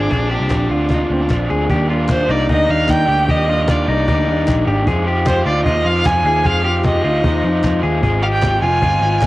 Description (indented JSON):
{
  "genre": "jangly indie pop",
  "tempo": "152 BPM",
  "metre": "4/4",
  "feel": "straight",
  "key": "Eb major",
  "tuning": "A4 = 440 Hz",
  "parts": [
    { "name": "rich violin", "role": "melody", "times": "0.0-9.3 s", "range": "C4 to Ab5", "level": "-19 LUFS", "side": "right 1 dB", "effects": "cassette tape" },
    { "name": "raw garage guitar", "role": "accompaniment", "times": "0.0-9.3 s", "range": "Bb2 to Eb5", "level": "-20 LUFS", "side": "right 2 dB", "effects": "overdrive, harmonic tremolo, cassette tape" },
    { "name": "electric guitar through a small old amp", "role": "arpeggios", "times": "0.0-9.3 s", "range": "Eb4 to Ab4", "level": "-21 LUFS", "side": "left 3 dB", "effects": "cassette tape" },
    { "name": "vintage muted picked electric bass", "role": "bass", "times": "0.0-9.3 s", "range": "F1 to F2", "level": "-19 LUFS", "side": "equal", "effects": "none" },
    { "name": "cajon", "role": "drums", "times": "0.1-9.3 s", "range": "none", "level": "-20 LUFS", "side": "equal", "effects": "cassette tape" },
    { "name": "group handclap", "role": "percussion", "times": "0.5-9.3 s", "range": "none", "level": "-36 LUFS", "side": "left 3 dB", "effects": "none" }
  ],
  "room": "moderate spring reverb, RT60 1.8 s, small room reverb",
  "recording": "home recording on cassette",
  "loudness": "-13 LUFS",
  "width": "side -17 dB against mid",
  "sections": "0.0-1.7 A section; 1.7-9.3 B section",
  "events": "none",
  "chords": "0.0 Bbadd9; 1.7 Ebmaj7; 4.9 Fm7; 8.0 Ab6"
}